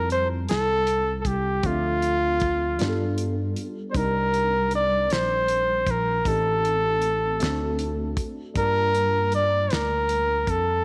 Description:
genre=slow six-eight R&B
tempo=52 BPM (dotted quarters)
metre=6/8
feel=straight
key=G minor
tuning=A4 = 440 Hz
part: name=warm flugelhorn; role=melody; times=0.0-10.8 s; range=F4 to D5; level=-25 LUFS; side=equal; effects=slapback echo
part: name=tine electric piano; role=accompaniment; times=0.0-10.8 s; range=F3 to A5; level=-35 LUFS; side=equal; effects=phaser
part: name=mellow tine electric piano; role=bass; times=0.0-10.8 s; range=A1 to G2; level=-31 LUFS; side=equal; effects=none
part: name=damped 70s drum kit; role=drums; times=0.1-10.7 s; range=hi-hat, kick drum, snare drum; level=-32 LUFS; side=equal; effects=none
room=light reverb, small room ambience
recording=none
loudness=-24 LUFS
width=mono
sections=0.0-10.8 A section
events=break 2.8-3.9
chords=0.0 Fmaj9; 1.6 Dm7; 2.8 G7; 3.9 Cm7; 6.2 Am7b5; 7.4 D7; 8.6 Gm7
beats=0.48 | 1.63 2.79 | 3.94 5.10 | 6.25 7.40 | 8.56 9.71

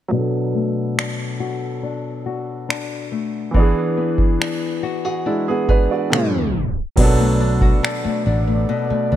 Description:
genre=contemporary R&B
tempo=70 BPM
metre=4/4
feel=straight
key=B minor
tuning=A4 = 441 Hz
part: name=warm concert grand piano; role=accompaniment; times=0.1-9.2 s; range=Eb3 to D5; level=-22 LUFS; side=right 4 dB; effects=low-pass filter
part: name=nylon-string guitar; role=arpeggios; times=0.1-9.2 s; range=B2 to G#4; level=-23 LUFS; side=left 6 dB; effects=low-pass filter, ping-pong delay
part: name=booming analog drum machine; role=drums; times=1.0-8.0 s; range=crash cymbal, finger snaps, kick drum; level=-20 LUFS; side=equal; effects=none
part: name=clear French horn section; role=sustained chords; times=7.0-9.2 s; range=B3 to D5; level=-26 LUFS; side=right 2 dB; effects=none
part: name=vintage muted fingered electric bass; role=bass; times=7.0-9.2 s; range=A1 to D2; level=-19 LUFS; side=equal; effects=none
room=light reverb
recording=tape stop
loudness=-17 LUFS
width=side -12 dB against mid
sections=0.1-7.0 A section; 7.0-9.2 B section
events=filter sweep 0.1-7.0; tape stop 6.1-7.0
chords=0.1 Bm7; 3.5 E7; 6.1 Cm7; 7.0 Bm7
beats=| 0.12 0.97 1.83 2.69 | 3.54 4.40 5.26 6.12 | 6.97 7.83 8.69

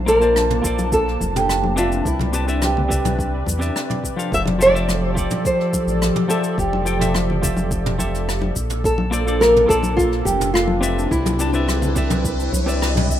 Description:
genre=sunset chillout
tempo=106 BPM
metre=4/4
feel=straight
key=F major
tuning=A4 = 442 Hz
part: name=airy breathy pad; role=sustained chords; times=0.0-13.2 s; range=C3 to A5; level=-26 LUFS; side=equal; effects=chorus, shimmer reverb
part: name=round analog bass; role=bass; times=0.0-13.2 s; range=F1 to E2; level=-23 LUFS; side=equal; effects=none
part: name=nylon-string guitar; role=melody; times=0.1-12.2 s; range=E4 to E5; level=-19 LUFS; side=equal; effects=ping-pong delay, shimmer reverb
part: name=semi-hollow electric guitar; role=accompaniment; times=0.1-13.2 s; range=F3 to A5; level=-25 LUFS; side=moving between left 4 dB and right 3 dB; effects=auto-pan, ping-pong delay, shimmer reverb
part: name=jazz brush drum kit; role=drums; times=0.1-13.2 s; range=rim click, shaker, toms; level=-27 LUFS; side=equal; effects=none
part: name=congas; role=percussion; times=0.4-13.1 s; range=none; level=-28 LUFS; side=left 3 dB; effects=none
part: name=electronic kick drum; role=drums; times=0.6-13.2 s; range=none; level=-26 LUFS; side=equal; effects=overdrive
part: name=riser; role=sound effects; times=10.8-13.2 s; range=none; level=-29 LUFS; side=right 1 dB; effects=none
room=moderate studio reverb, RT60 0.6 s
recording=rough home demo mix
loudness=-16 LUFS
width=side -11 dB against mid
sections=0.0-13.2 A section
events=riser 10.8-13.2; band accent 12.8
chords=0.0 Bbmaj9; 2.1 Cmaj9; 4.3 Fmaj9; 8.6 Bbmaj9; 11.1 Cmaj9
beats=0.36 0.92 1.49 | 2.06 2.62 3.19 3.75 | 4.32 4.88 5.45 6.02 | 6.58 7.15 7.71 8.28 | 8.85 9.41 9.98 10.54 | 11.11 11.68 12.24 12.81

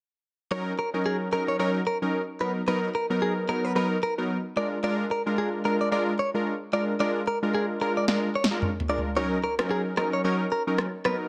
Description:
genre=afrobeats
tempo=111 BPM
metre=4/4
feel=swing 58% on 16ths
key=Eb harmonic minor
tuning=A4 = 440 Hz
part: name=warm analog keys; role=accompaniment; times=0.5-11.3 s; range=Gb3 to Bb4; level=-29 LUFS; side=equal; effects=chorus
part: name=direct-recorded clean electric guitar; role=riff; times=0.5-11.2 s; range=Ab4 to D5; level=-31 LUFS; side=equal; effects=delay
part: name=deep house drum kit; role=drums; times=8.1-11.2 s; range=rim click, snare drum, toms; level=-31 LUFS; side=equal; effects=soft clipping on snare
room=light reverb, digital ambience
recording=dense, heavily limited modern master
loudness=-27 LUFS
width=mono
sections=0.5-11.3 A section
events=drum fill 8.1-9.2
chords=0.5 Ebm7; 2.4 Bmaj7; 4.6 Bb7; 9.2 Ebm7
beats=| 0.51 1.05 1.59 2.13 | 2.67 3.22 3.76 4.30 | 4.84 5.38 5.92 6.46 | 7.00 7.54 8.08 8.62 | 9.16 9.70 10.24 10.78

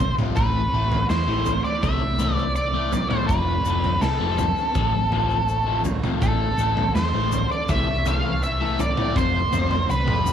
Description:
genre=psychedelic rock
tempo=82 BPM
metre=4/4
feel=straight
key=A minor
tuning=A4 = 440 Hz
part: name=octave-fuzz lead guitar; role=melody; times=0.0-10.3 s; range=A4 to F5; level=-24 LUFS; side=equal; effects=distortion, tape echo
part: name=phased string machine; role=sustained chords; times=0.0-10.3 s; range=E3 to F5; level=-34 LUFS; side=right 14 dB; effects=ensemble chorus, phaser
part: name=fuzz guitar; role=riff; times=0.0-10.3 s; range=F2 to A3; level=-28 LUFS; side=left 13 dB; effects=distortion, phaser
part: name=hollow-body short-scale fingered electric bass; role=bass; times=0.0-10.3 s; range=F1 to E2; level=-25 LUFS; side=right 1 dB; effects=none
part: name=tanpura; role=drone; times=0.0-10.3 s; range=A2 to A3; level=-37 LUFS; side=right 1 dB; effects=none
part: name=raw garage drum kit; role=drums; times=0.0-10.3 s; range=kick drum, snare drum, toms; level=-26 LUFS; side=right 2 dB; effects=none
part: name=egg shaker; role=percussion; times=0.2-10.3 s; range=none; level=-44 LUFS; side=left 16 dB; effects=none
room=small room ambience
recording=1960s-style stereo with parts hard left and right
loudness=-20 LUFS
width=side -9 dB against mid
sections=0.0-10.3 A section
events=none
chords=0.4 Am; 3.3 F; 6.2 Am; 9.2 F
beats=| 0.36 1.09 1.83 2.56 | 3.29 4.02 4.76 5.49 | 6.22 6.95 7.69 8.42 | 9.15 9.89

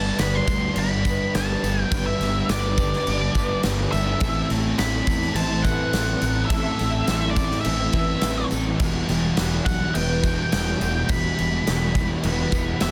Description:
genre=rock, shoegaze and dream pop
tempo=104 BPM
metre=4/4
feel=straight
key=G major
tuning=A4 = 439 Hz
part: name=octave-fuzz lead guitar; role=melody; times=0.0-12.9 s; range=D5 to C6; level=-30 LUFS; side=equal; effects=distortion, tape echo
part: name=picked twelve-string acoustic guitar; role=arpeggios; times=0.0-12.5 s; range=B3 to D5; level=-35 LUFS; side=equal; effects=ensemble chorus, tape echo
part: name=electric guitar through a small old amp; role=riff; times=0.0-12.9 s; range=G2 to F#4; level=-33 LUFS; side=equal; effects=reverse reverb
part: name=thick fuzz guitar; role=riff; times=0.0-12.9 s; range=E2 to A3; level=-30 LUFS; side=equal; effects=distortion, lush chorus
part: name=fuzz fingered electric bass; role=bass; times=0.0-12.9 s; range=E1 to E2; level=-29 LUFS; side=equal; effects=overdrive
part: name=big rock drum kit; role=drums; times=0.2-12.9 s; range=crash cymbal, kick drum, snare drum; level=-28 LUFS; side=equal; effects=none
part: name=tambourine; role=percussion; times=0.2-12.9 s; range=none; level=-43 LUFS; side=equal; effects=none
room=light reverb, studio reverb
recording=dense, heavily limited modern master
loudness=-22 LUFS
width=mono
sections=0.0-12.9 A section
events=none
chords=0.0 G; 4.2 Am; 8.8 Emadd9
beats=0.19 0.76 1.34 | 1.91 2.49 3.06 3.64 | 4.21 4.79 5.36 5.94 | 6.51 7.08 7.66 8.23 | 8.80 9.38 9.95 10.53 | 11.10 11.67 12.24 12.81

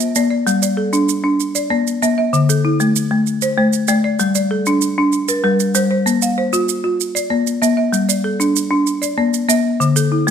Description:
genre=southern african traditional, mbira-style interlocking cycle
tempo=128 BPM (dotted quarters)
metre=12/8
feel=straight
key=G equiheptatonic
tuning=A4 = 440 Hz
part: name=folk marimba with hard mallets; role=arpeggios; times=0.0-10.3 s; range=D3 to F5+29c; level=-14 LUFS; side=left 1 dB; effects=none
part: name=maracas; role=percussion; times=0.0-10.3 s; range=none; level=-22 LUFS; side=right 12 dB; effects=none
room=moderate recital hall reverb, RT60 1.3 s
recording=close, detailed microphones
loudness=-14 LUFS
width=side -8 dB against mid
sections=0.5-10.3 A section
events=none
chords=0.5 G5; 1.4 Bb; 2.3 D5; 3.3 Am; 4.2 Gm; 6.1 Bb; 7.9 G5; 8.9 Bb; 9.8 D5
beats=0.00 | 0.47 0.93 1.40 1.86 | 2.33 2.80 3.27 3.73 | 4.20 4.67 5.13 5.60 | 6.07 6.54 7.00 7.47 | 7.94 8.40 8.87 9.34 | 9.80 10.27

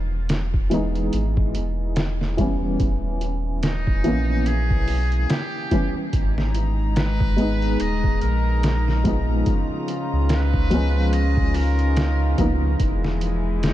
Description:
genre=trip hop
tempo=72 BPM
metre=4/4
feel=swing 58% on 16ths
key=G# harmonic minor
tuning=A4 = 442 Hz
part: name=warm sub bass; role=bass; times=0.0-13.7 s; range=D#1 to C#2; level=-22 LUFS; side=equal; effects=none
part: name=trip hop sampler-style drum kit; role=drums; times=0.3-13.7 s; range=hi-hat, kick drum, snare drum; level=-24 LUFS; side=equal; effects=vintage 12-bit sampler grit
part: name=felt-muted upright piano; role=accompaniment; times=0.7-12.6 s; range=E3 to D#4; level=-26 LUFS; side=equal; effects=tremolo, tape echo
part: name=trumpet with metal mute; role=melody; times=3.6-13.7 s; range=D#4 to D#5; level=-32 LUFS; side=right 1 dB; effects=dub echo
part: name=dark chamber string section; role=sustained chords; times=6.1-13.7 s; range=C#3 to A#5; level=-27 LUFS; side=left 2 dB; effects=none
room=light reverb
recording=none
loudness=-19 LUFS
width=side -14 dB against mid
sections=0.0-13.7 A section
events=none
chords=0.0 Emaj7; 2.8 D#7b9b13; 6.1 G#madd9; 9.5 C#13; 12.8 Emaj7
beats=0.30 1.13 1.97 | 2.80 3.63 4.47 5.30 | 6.13 6.97 7.80 8.63 | 9.47 10.30 11.13 11.97 | 12.80 13.63

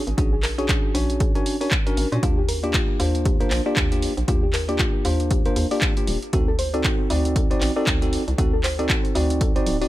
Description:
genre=deep house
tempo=117 BPM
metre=4/4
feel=swing 59% on 16ths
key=unclear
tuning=A4 = 444 Hz
part: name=hollow knocking FM bass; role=bass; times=0.1-9.9 s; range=D1 to Bb2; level=-25 LUFS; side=equal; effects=sidechain pumping
part: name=punchy analog drum machine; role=drums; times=0.1-9.9 s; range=handclaps, hi-hat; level=-27 LUFS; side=equal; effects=none
part: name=soft round pluck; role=arpeggios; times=0.2-9.9 s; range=F4 to D5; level=-31 LUFS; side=left 2 dB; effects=chorus, sidechain pumping, ping-pong delay
part: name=bell-like tine electric piano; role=stabs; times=0.2-9.9 s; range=Bb3 to D5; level=-25 LUFS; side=equal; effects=sidechain pumping, tape echo
part: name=electronic kick drum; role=drums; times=0.2-9.5 s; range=none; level=-22 LUFS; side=equal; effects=none
room=little or no reverb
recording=none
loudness=-19 LUFS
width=side -16 dB against mid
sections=0.0-9.9 A section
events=none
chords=0.0 Bb7alt; 2.2 Ebmaj9; 6.3 D7b9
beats=| 0.18 0.69 1.20 1.72 | 2.23 2.74 3.25 3.77 | 4.28 4.79 5.31 5.82 | 6.33 6.84 7.36 7.87 | 8.38 8.90 9.41

